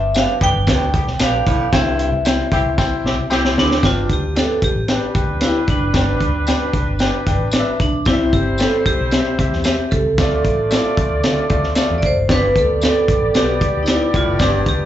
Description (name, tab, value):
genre	uptempo 1960s-style soul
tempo	114 BPM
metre	4/4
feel	straight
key	G mixolydian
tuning	A4 = 441 Hz
part	vibraphone with hard mallets	melody	0.0-14.9 s	D4 to G5	-20 LUFS	right 2 dB	none
part	bright grand piano	accompaniment	0.0-14.9 s	G2 to G5	-23 LUFS	left 4 dB	slapback echo
part	vintage muted fingered electric bass	bass	0.0-14.9 s	F1 to D3	-21 LUFS	equal	none
part	tambourine	percussion	0.1-14.5 s	none	-32 LUFS	left 3 dB	none
part	vintage drum kit	drums	0.2-14.8 s	hi-hat, kick drum, snare drum	-19 LUFS	equal	none
part	clear horn section	second line	0.4-14.9 s	D3 to D5	-25 LUFS	equal	slapback echo
part	raspy baritone saxophone	riff	0.7-3.8, 12.3-14.8 s	E2 to B2	-25 LUFS	left 1 dB	slapback echo
room	studio reverb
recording	live gig heard through the venue's PA, club ambience, nothing above 7.8 kHz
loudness	-14 LUFS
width	side -12 dB against mid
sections	0.0-3.8 A section; 3.8-14.9 B section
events	drum fill 2.8-3.8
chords	0.0 G; 1.7 C; 3.8 G; 8.1 C; 10.2 Dm; 12.3 G